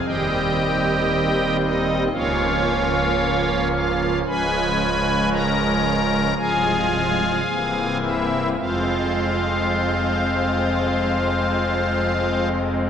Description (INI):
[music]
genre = classical, chorale-style piece for pipe organ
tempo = 53-58 BPM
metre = 4/4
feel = rubato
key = F minor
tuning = A4 = 440 Hz
[part]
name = pipe organ, strings celeste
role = solo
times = 0.0-12.9 s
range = C1 to Cb6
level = -18 LUFS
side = equal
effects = none
[sound]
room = wet church reverb, RT60 2.7 s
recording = none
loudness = -18 LUFS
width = side -8 dB against mid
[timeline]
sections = 0.0-12.9 A section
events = none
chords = 0.0 Cm/Eb; 2.1 Bbm/Db; 4.3 Db7; 6.4 Fm/C; 7.5 C7; 8.6 Fm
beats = | 0.03 1.08 2.12 3.18 | 4.27 5.32 6.37 7.45 | 8.58 9.71 10.83 11.96